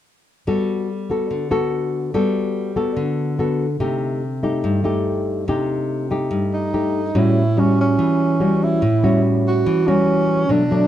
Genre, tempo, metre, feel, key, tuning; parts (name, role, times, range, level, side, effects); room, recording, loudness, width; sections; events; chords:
bossa nova; 144 BPM; 4/4; straight; A4 = 441 Hz
nylon-string guitar; accompaniment; 0.5-10.9 s; G2 to A4; -18 LUFS; left 1 dB
dark tenor saxophone; melody; 6.5-10.9 s; C#4 to F#4; -20 LUFS; right 2 dB
moderate echo chamber reverb, RT60 1.4 s; dark, warm production; -17 LUFS; side -11 dB against mid
0.5-7.1 A section; 7.1-10.9 B section
0.5 Gmaj9; 3.8 Cm6; 7.1 A6